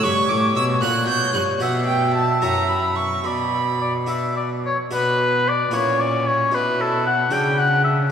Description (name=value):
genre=classical, baroque-style sonata movement with continuo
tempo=74 BPM (dotted quarters)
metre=6/8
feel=rubato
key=B minor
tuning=A4 = 440 Hz
part: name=clear oboe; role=melody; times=0.0-8.0 s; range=A4 to G5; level=-21 LUFS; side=left 3 dB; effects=none
part: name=warm violin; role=second line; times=0.0-8.1 s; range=C#4 to G6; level=-23 LUFS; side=right 4 dB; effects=none
part: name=harpsichord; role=accompaniment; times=0.0-8.1 s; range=F#2 to D5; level=-28 LUFS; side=right 1 dB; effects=none
part: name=rich cello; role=bass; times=0.0-8.1 s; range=F#2 to C#3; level=-24 LUFS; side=equal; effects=none
room=wet church reverb, RT60 3.5 s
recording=recorded in a church or concert hall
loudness=-18 LUFS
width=side -8 dB against mid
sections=0.0-4.9 A section; 4.9-8.1 B section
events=none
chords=0.0 G; 0.8 F#/A#; 1.6 Bm; 2.4 F#5; 3.2 Bm; 5.7 F#7/A#; 6.5 Bm